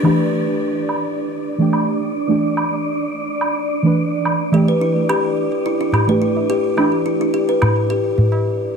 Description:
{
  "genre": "organic downtempo",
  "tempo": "107 BPM",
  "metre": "4/4",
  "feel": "swing 53% on 16ths",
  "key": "E minor pentatonic",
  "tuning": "A4 = 440 Hz",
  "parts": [
    { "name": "deep mellow chord stab", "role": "accompaniment", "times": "0.0-8.8 s", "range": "E3 to B4", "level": "-19 LUFS", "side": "right 2 dB", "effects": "chorus, tape echo" },
    { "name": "kalimba", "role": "arpeggios", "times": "0.0, 4.5-8.0 s", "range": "E4 to B4", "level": "-20 LUFS", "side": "left 2 dB", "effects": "tape echo" },
    { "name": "woodblock", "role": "drums", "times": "0.0-7.7 s", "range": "none", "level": "-24 LUFS", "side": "right 2 dB", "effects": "overdrive, low-pass filter on perc, low-pass filter on snare, low-pass filter on room" },
    { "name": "wind-like tuned noise texture", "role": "texture", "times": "0.0-8.5 s", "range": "D4 to D5", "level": "-25 LUFS", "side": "right 2 dB", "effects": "built-in reverb" },
    { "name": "tabla", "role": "percussion", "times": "4.5-8.4 s", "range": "none", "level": "-20 LUFS", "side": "equal", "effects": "none" }
  ],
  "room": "moderate huge ambient reverb, RT60 5.1 s",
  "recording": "none",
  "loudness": "-16 LUFS",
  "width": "side -6 dB against mid",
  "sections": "0.0-8.8 A section",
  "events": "stop 8.5-8.8",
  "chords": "0.0 Em7"
}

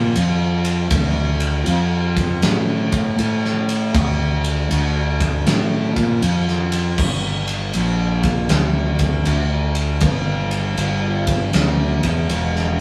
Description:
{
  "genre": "stoner and doom metal",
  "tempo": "79 BPM",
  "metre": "4/4",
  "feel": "swing 66% on 8ths",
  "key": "D minor",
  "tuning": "A4 = 440 Hz",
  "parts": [
    { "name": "fuzz fingered electric bass", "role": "bass", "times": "0.0-12.8 s", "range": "E1 to Bb2", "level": "-21 LUFS", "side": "equal", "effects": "overdrive" },
    { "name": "big rock drum kit", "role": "drums", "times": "0.2-12.7 s", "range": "crash cymbal, kick drum, ride cymbal, snare drum", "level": "-23 LUFS", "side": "equal", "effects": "none" }
  ],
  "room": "moderate stone room reverb, RT60 1.0 s",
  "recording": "band playing live in one room, small room ambience",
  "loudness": "-19 LUFS",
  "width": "mono",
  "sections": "0.0-12.8 A section",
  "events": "none",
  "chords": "none"
}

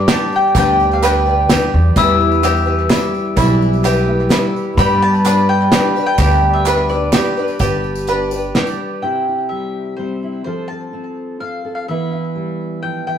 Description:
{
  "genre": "indie folk with a building arrangement",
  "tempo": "128 BPM",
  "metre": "3/4",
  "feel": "straight",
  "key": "unclear",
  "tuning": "A4 = 436 Hz",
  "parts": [
    { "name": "mandolin", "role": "melody", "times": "0.0-1.7, 4.8-13.2 s", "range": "C5 to B5", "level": "-19 LUFS", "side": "equal", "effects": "digital delay" },
    { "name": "glockenspiel with soft plastic mallets", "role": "second line", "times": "0.0-7.3 s", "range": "B5 to E6", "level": "-21 LUFS", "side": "left 5 dB", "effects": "none" },
    { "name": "felt-muted upright piano", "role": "accompaniment", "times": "0.0-7.6 s", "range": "G1 to E5", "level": "-26 LUFS", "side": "right 1 dB", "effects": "none" },
    { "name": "picked twelve-string acoustic guitar", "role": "accompaniment", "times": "0.0-9.0 s", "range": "E3 to B4", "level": "-19 LUFS", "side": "left 2 dB", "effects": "none" },
    { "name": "bluegrass banjo", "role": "arpeggios", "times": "0.0-9.0 s", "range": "E4 to B4", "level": "-22 LUFS", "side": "right 6 dB", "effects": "none" },
    { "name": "upright bass", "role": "bass", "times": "0.0-8.5 s", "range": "G1 to G2", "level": "-17 LUFS", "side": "equal", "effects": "none" },
    { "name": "cloth-damped thuddy drum kit", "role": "drums", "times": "0.1-8.7 s", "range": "hi-hat, kick drum, snare drum", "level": "-17 LUFS", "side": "equal", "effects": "none" },
    { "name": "group handclap", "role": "percussion", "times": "0.1-7.5 s", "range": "none", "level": "-29 LUFS", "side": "right 4 dB", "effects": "none" },
    { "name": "tambourine", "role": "percussion", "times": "0.1-8.8 s", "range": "none", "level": "-36 LUFS", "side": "left 5 dB", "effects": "none" },
    { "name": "fingerpicked steel-string acoustic guitar", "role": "accompaniment", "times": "9.0-13.2 s", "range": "C3 to B4", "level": "-23 LUFS", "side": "equal", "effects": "none" }
  ],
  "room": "wet stone room reverb, RT60 1.1 s",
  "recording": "rough rehearsal-room recording",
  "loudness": "-13 LUFS",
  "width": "side -9 dB against mid",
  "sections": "0.0-7.6 A section; 7.6-9.0 B section; 9.0-13.2 C section",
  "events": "none",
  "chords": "0.0 G; 2.0 Em; 4.8 G; 9.0 C; 10.4 F; 11.9 Em"
}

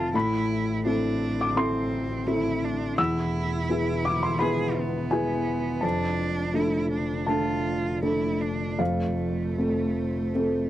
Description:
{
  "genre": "neoclassical piano and strings",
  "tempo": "83 BPM",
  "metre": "4/4",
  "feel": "uneven beats, rubato",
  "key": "A harmonic minor",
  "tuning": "A4 = 440 Hz",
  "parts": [
    { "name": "clear cello", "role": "second line", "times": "0.0-10.7 s", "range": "A3 to G#4", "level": "-32 LUFS", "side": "right 4 dB", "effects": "none" },
    { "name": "dark baby grand piano", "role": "accompaniment", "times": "0.0-10.7 s", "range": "E2 to E6", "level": "-25 LUFS", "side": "left 1 dB", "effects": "none" },
    { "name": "ethereal airy pad", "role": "sustained chords", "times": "0.0-10.7 s", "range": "F3 to D5", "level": "-40 LUFS", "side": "left 2 dB", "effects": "none" },
    { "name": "rich double bass", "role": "bass", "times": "0.0-10.7 s", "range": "E1 to A1", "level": "-34 LUFS", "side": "equal", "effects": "none" }
  ],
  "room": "little or no reverb",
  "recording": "dry, gritty hardware recording, transformer saturation",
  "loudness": "-24 LUFS",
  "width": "side -13 dB against mid",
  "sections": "0.0-10.7 A section",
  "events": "none",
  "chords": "0.1 Amadd9; 3.0 E; 5.8 Dm/F; 8.8 F"
}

